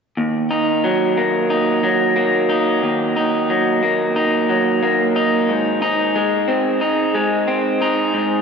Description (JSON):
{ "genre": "rock", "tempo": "90 BPM", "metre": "4/4", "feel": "straight", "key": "Eb dorian", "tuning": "A4 = 440 Hz", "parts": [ { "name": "electric guitar through a small old amp", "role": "arpeggios", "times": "0.2-8.4 s", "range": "Eb2 to Eb4", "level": "-15 LUFS", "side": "equal", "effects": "tape echo" } ], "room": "wet lush hall reverb, RT60 2.4 s", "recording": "dreamy mix soaked in reverb, nothing above 7.8 kHz", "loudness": "-15 LUFS", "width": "side -6 dB against mid", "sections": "0.2-8.4 A section", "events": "none", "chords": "0.2 Ebm; 5.5 Ab" }